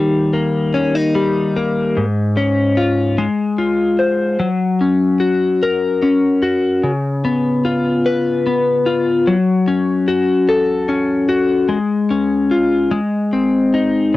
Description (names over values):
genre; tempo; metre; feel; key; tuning
pop; 49 BPM (dotted quarters); 6/8; straight; Db major; A4 = 440 Hz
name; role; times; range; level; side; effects
direct-recorded clean electric guitar; solo; 0.0-14.2 s; Ab2 to C5; -14 LUFS; left 2 dB; wide subtle chorus, cassette tape
room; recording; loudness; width
wet booth ambience, RT60 0.2 s; home recording on cassette; -14 LUFS; side -16 dB against mid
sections
0.0-14.1 A section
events
none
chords
0.0 Eb; 2.0 Db/Ab; 3.2 Ab6; 4.4 Gb; 6.8 Db7; 9.3 Gbm; 11.7 Db/Ab; 12.9 Ab